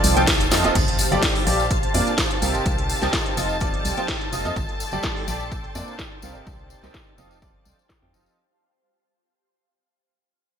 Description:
piano house; 126 BPM; 4/4; straight; A4 = 440 Hz
clear studio violin section; sustained chords; 0.0-8.4 s; A5 to A6; -31 LUFS; left 1 dB; sidechain pumping
clear grand piano; riff; 0.0-8.4 s; Bb2 to G5; -25 LUFS; right 1 dB; analog chorus, sidechain pumping, low-pass filter, ping-pong delay
organ-like FM bass; bass; 0.0-8.3 s; Eb1 to F2; -26 LUFS; equal; tube saturation, sidechain pumping
garage drum kit; drums; 0.0-8.4 s; crash cymbal, hi-hat, snare drum; -25 LUFS; equal; low-pass filter on hats, low-pass filter on snare, low-pass filter on cymbals, low-pass filter on room, gated reverb
tambourine; percussion; 0.0-8.4 s; -32 LUFS; left 8 dB
granular cloud pad; texture; 0.0-8.4 s; G4 to C6; -31 LUFS; equal; built-in reverb, ensemble chorus, sidechain pumping
electronic kick drum; drums; 0.3-8.0 s; -26 LUFS; equal
impact; sound effects; 0.8-2.7 s; -33 LUFS; right 1 dB
light reverb; bright 1980s-style digital production; -19 LUFS; side -8 dB against mid
0.8-8.4 A section
drum fill 0.5; fade-out 0.8-8.4; impact 0.8-2.7
0.0 F7; 0.8 Gsus2; 1.7 Bbadd9; 2.4 Cm7; 3.4 F7; 4.6 Gsus2; 5.5 Bbadd9; 6.2 Cm7; 7.2 F7
0.28 | 0.75 1.23 1.71 2.18 | 2.66 3.13 3.61 4.09 | 4.56 5.04 5.52 5.99 | 6.47 6.95 7.42 7.90

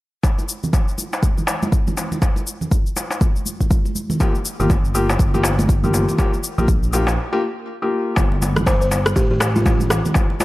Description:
afro house; 121 BPM; 4/4; swing 59% on 16ths; G minor; A4 = 435 Hz
electronic kick drum; drums; 0.2-10.3 s; -18 LUFS; equal
electronic shaker and rim click; drums; 0.2-10.4 s; -26 LUFS; left 1 dB
darbuka; percussion; 0.2-10.4 s; -26 LUFS; left 1 dB
congas; percussion; 0.4-10.4 s; -26 LUFS; right 1 dB
felt-muted upright piano; stabs; 4.2-8.1 s; Bb3 to G4; -22 LUFS; left 2 dB; sidechain pumping, digital delay
smooth synth bass; bass; 4.6-10.0 s; G1 to Bb1; -21 LUFS; equal; sidechain pumping
buzzing kalimba; melody; 8.7-10.4 s; F4 to C5; -23 LUFS; equal; digital delay
small room ambience; lossy compression artefacts; -16 LUFS; side -18 dB against mid
0.2-8.2 A section; 8.2-10.4 B section
break 7.2-8.2
0.2 Gm7; 8.2 N.C.
| 0.24 0.73 1.23 1.72 | 2.22 2.72 3.21 3.71 | 4.20 4.70 5.20 5.69 | 6.19 6.68 7.18 7.67 | 8.17 8.67 9.16 9.66 | 10.15

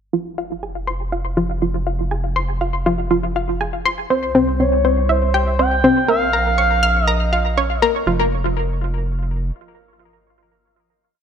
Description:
ambient, sequencer-driven space music; 121 BPM; 4/4; straight; F minor; A4 = 441 Hz
analog pluck; riff; 0.1-8.3 s; C4 to F6; -19 LUFS; equal; chorus, tape echo
round analog bass; bass; 0.1-9.5 s; F1 to C2; -22 LUFS; equal
expressive portamento lead; melody; 4.1-7.5 s; C5 to G5; -20 LUFS; equal; chorus, tape echo
moderate plate reverb, RT60 2.5 s; faint mains hum; -16 LUFS; side -8 dB against mid
0.1-8.1 A section; 8.1-11.2 final note
filter sweep on synth arpeggio sound 0.1-8.1
0.1 Fm; 4.1 C; 6.1 Bbm; 8.1 N.C.
| 0.13 0.63 1.12 1.62 | 2.12 2.61 3.11 3.60 | 4.10 4.60 5.09 5.59 | 6.08 6.58 7.08 7.57 | 8.07 8.56 9.06

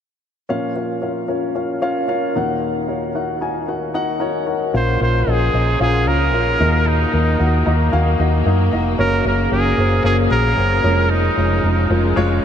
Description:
pop; 113 BPM; 4/4; straight; Bb minor; A4 = 442 Hz
warm grand piano; accompaniment; 0.5-12.4 s; Eb2 to Bb5; -19 LUFS; left 2 dB; wide subtle chorus
warm studio string section; sustained chords; 4.7-12.4 s; Db3 to Bb3; -28 LUFS; equal
hollow-body short-scale fingered electric bass; bass; 4.7-12.4 s; F1 to Gb2; -18 LUFS; equal
bright trumpet; melody; 4.8-12.2 s; Eb4 to C5; -20 LUFS; right 1 dB
moderate huge ambient reverb, RT60 8.9 s; dreamy mix soaked in reverb; -15 LUFS; side -8 dB against mid
0.5-4.7 A section; 4.7-12.4 B section
grand piano fill 7.4-9.0
0.5 Bbm; 2.4 Ebm; 4.7 Bbm; 6.6 Ebm; 9.0 Gb; 10.8 Db/F
| 0.49 1.02 1.55 2.08 | 2.62 3.15 3.68 4.21 | 4.74 5.27 5.80 6.33 | 6.86 7.39 7.93 8.46 | 8.99 9.52 10.05 10.58 | 11.11 11.64 12.17

